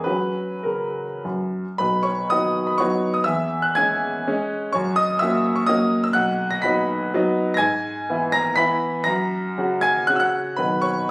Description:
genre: classical, romantic triple-time dance for piano with dotted rhythms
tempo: 96-131 BPM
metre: 3/4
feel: rubato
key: B major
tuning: A4 = 440 Hz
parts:
  - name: clear grand piano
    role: solo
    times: 0.0-11.1 s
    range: B1 to B6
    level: -22 LUFS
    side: equal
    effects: none
room: light reverb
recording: recorded on a phone in the room, studio reverb, compression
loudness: -22 LUFS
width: mono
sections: 0.0-1.8 A section; 1.8-11.1 B section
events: none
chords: 0.1 F#; 1.8 B; 3.3 C#m/E; 4.7 F#7; 6.1 B; 7.6 E/G#; 9.1 F#; 10.6 B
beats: | 0.06 0.66 1.24 | 1.80 2.31 2.81 | 3.28 3.78 4.28 | 4.74 5.21 5.68 | 6.14 6.63 7.12 | 7.59 8.08 8.58 | 9.07 9.57 10.09 | 10.59

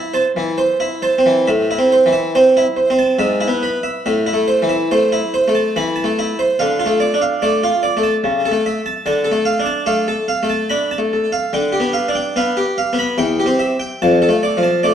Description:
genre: classical, baroque-style suite movement for harpsichord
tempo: 72 BPM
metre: 3/4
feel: rubato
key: A minor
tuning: A4 = 439 Hz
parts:
  - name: harpsichord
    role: solo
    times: 0.0-14.9 s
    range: E2 to B5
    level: -14 LUFS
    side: equal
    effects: none
room: wet stone room reverb, RT60 1.3 s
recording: worn, warbling old tape, cassette tape, warbly pitch drift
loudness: -14 LUFS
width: side -9 dB against mid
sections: 0.0-1.5 A section; 1.5-14.9 B section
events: none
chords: 0.0 Am; 3.2 E/G#; 4.0 Am; 6.6 Dm; 8.2 A/C#; 9.0 Dm; 11.5 G7/D; 13.2 C/E; 14.0 Dm/F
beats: 0.58 | 1.48 2.34 3.18 | 4.04 4.89 5.74 | 6.57 7.39 8.23 | 9.04 9.85 10.68 | 11.51 12.34 13.17 | 14.00 14.83

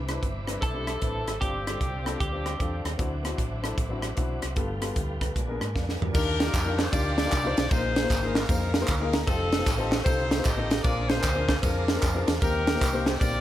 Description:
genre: uptempo gospel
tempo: 152 BPM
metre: 4/4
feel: swing 64% on 8ths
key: Eb major from 6.1 s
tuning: A4 = 440 Hz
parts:
  - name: warm grand piano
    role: accompaniment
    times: 0.0-13.4 s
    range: G2 to Bb5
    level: -32 LUFS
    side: left 3 dB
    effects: none
  - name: tonewheel organ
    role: sustained chords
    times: 0.0-13.4 s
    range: D4 to D6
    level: -39 LUFS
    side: right 2 dB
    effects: chorus vibrato, stopped rotary speaker
  - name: warm studio string section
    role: sustained chords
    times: 0.0-6.1 s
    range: F#3 to F4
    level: -43 LUFS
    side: equal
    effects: none
  - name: hollow-body short-scale fingered electric bass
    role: bass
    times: 0.0-13.4 s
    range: F1 to Ab2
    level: -31 LUFS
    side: equal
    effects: none
  - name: crisp fusion drum kit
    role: drums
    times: 0.1-13.3 s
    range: crash cymbal, hi-hat, kick drum, ride cymbal, rim click, snare drum, toms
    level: -27 LUFS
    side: equal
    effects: none
  - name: bright saxophone section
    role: melody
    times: 0.6-3.0, 6.1-13.4 s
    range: C4 to Eb5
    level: -31 LUFS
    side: left 2 dB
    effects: none
  - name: semi-hollow electric guitar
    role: melody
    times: 0.6-2.8 s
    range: G4 to A4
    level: -36 LUFS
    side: right 4 dB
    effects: none
  - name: tambourine and handclaps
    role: percussion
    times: 6.1-13.3 s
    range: none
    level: -35 LUFS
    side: right 1 dB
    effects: none
room: light reverb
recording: none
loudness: -24 LUFS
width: side -12 dB against mid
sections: 0.0-6.1 A section; 6.1-13.4 B section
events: drum fill 5.7-6.1; grand piano fill 8.7-9.3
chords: 0.0 Cmaj9; 1.4 G7sus4; 3.0 D9; 4.6 G9; 5.4 Bb7b9; 6.1 Ebmaj9; 7.7 Bb7sus4; 9.3 F9; 10.8 Bb9; 12.4 Eb6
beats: 0.23 0.62 1.02 | 1.41 1.81 2.20 2.60 | 2.99 3.38 3.78 4.17 | 4.57 4.96 5.36 5.75 | 6.14 6.53 6.92 7.32 | 7.71 8.10 8.49 8.88 | 9.27 9.67 10.06 10.45 | 10.85 11.24 11.63 12.03 | 12.42 12.81 13.21

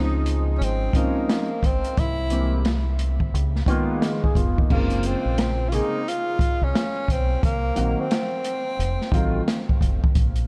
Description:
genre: hip hop, jazz-hop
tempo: 88 BPM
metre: 4/4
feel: swing 62% on 16ths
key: unclear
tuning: A4 = 440 Hz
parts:
  - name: breathy tenor saxophone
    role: melody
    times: 0.0-9.8 s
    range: Bb3 to F4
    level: -31 LUFS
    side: equal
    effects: delay
  - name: dark baby grand piano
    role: accompaniment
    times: 0.0-9.4 s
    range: Db3 to Cb5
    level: -30 LUFS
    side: equal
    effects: analog chorus
  - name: deep dub fingered electric bass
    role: bass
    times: 0.0-10.5 s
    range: F1 to Db2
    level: -26 LUFS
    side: equal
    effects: none
  - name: open jazz drum kit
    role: drums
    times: 0.3-10.5 s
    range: crash cymbal, hi-hat, kick drum, snare drum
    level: -26 LUFS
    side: equal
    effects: vintage 12-bit sampler grit
room: moderate cathedral reverb, RT60 4.7 s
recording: dreamy mix soaked in reverb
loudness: -23 LUFS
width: mono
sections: 0.0-4.7 A section; 4.7-10.5 B section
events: none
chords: 0.0 Dbmaj9; 2.0 C7b13; 3.3 Db13; 4.7 Gbmaj9#11; 7.4 Cm7b5; 8.8 F7b9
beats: 0.61 1.29 | 1.98 2.66 3.34 4.02 | 4.70 5.38 6.07 6.75 | 7.43 8.11 8.79 9.47 | 10.16

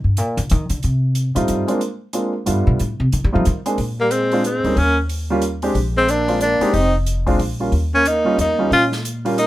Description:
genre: jazz, small-group swing and bop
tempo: 183 BPM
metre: 3/4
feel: swing 62% on 8ths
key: Bb major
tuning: A4 = 440 Hz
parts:
  - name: upright bass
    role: bass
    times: 0.0-9.5 s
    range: F1 to G3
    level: -20 LUFS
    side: equal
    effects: none
  - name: open jazz drum kit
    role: drums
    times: 0.2-9.5 s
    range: hi-hat, kick drum, snare drum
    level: -30 LUFS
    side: equal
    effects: none
  - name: warm grand piano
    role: accompaniment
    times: 1.4-9.4 s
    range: G3 to Ab4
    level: -20 LUFS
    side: right 1 dB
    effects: none
  - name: breathy tenor saxophone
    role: melody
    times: 4.0-9.5 s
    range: Bb3 to F4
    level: -17 LUFS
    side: equal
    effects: plate reverb
  - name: breathy trombone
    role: second line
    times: 4.0-9.5 s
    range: G3 to Db4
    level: -24 LUFS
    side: right 2 dB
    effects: none
room: light reverb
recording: none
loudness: -16 LUFS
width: side -15 dB against mid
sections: 0.0-3.8 A section; 3.8-9.5 B section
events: upright bass solo 0.0-3.8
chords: 0.0 Gm; 0.8 F9; 1.8 Bb9; 2.5 G7; 2.8 F9; 3.8 Bb9; 4.8 Eb7; 5.8 Bb9; 6.7 Fm; 7.4 Bb5; 7.7 Eb9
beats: 0.17 0.50 | 0.82 1.15 1.48 | 1.81 2.14 2.46 | 2.79 3.12 3.45 | 3.78 4.11 4.43 | 4.76 5.09 5.42 | 5.75 6.08 6.41 | 6.74 7.07 7.39 | 7.72 8.05 8.38 | 8.71 9.04 9.37

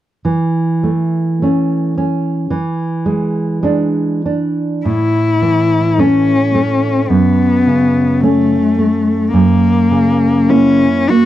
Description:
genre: romantic duo for cello and classical guitar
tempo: 47-55 BPM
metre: 4/4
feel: rubato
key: A major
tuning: A4 = 440 Hz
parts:
  - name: nylon-string guitar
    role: accompaniment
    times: 0.2-11.3 s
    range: F#2 to E4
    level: -13 LUFS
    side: right 1 dB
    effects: none
  - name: warm cello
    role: melody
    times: 4.9-11.3 s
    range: A3 to F#4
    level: -13 LUFS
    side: left 3 dB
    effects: none
room: light reverb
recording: dry, close 1970s-style studio recording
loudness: -11 LUFS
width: side -13 dB against mid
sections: 0.2-4.9 A section; 4.9-11.3 B section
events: none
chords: 0.2 A/E; 2.5 E7; 4.9 A; 7.1 F#m; 9.3 F#7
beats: | 0.24 1.41 2.52 3.65 | 4.86 6.00 7.10 8.22 | 9.34 10.50

